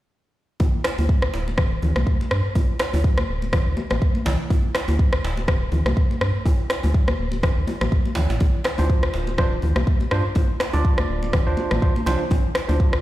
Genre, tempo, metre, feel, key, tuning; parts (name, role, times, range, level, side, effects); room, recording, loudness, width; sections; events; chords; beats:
afro house; 123 BPM; 4/4; swing 55% on 16ths; D minor; A4 = 442 Hz
round analog bass; bass; 0.6-13.0 s; D1 to G2; -23 LUFS; equal; sidechain pumping
electronic kick drum; drums; 0.6-12.9 s; -20 LUFS; equal
congas; percussion; 0.6-12.8 s; -30 LUFS; left 2 dB
djembe; percussion; 0.6-12.8 s; -31 LUFS; right 3 dB
electronic rim click; drums; 0.8-13.0 s; -27 LUFS; equal
tine electric piano; stabs; 8.8-13.0 s; D4 to D5; -27 LUFS; right 2 dB; overdrive, sidechain pumping, ping-pong delay
light reverb, small room ambience; played on a big sound system in a bare room, stone room reverb; -19 LUFS; side -15 dB against mid
0.6-13.0 A section
0.6 Dm7
| 0.60 1.09 1.58 2.06 | 2.55 3.04 3.53 4.02 | 4.50 4.99 5.48 5.97 | 6.46 6.94 7.43 7.92 | 8.41 8.89 9.38 9.87 | 10.36 10.85 11.33 11.82 | 12.31 12.80